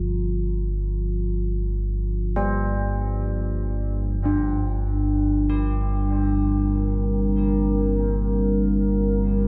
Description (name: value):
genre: dark ambient drone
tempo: 48 BPM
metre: 4/4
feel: straight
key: unclear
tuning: A4 = 445 Hz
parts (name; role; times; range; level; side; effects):
- deep rumbling drone; drone; 0.0-9.5 s; G1 to G2; -26 LUFS; equal; built-in reverb
- bronze singing bowl; texture; 0.0-9.5 s; F3 to F4; -30 LUFS; equal; none
- carillon bells; arpeggios; 2.4-9.5 s; F3 to G4; -35 LUFS; equal; diffuse ambient delay
- deep dark ambient pad; sustained chords; 5.8-9.5 s; G3 to D5; -26 LUFS; equal; chorus, built-in reverb
room: wet cathedral reverb, RT60 5.3 s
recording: none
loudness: -23 LUFS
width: mono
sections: 0.0-4.2 A section; 4.2-9.5 B section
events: filter sweep on synth drone 0.0-4.2; fade-in on church bells 4.2-9.5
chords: 0.0 Dmadd11/G (rootless); 4.2 Gm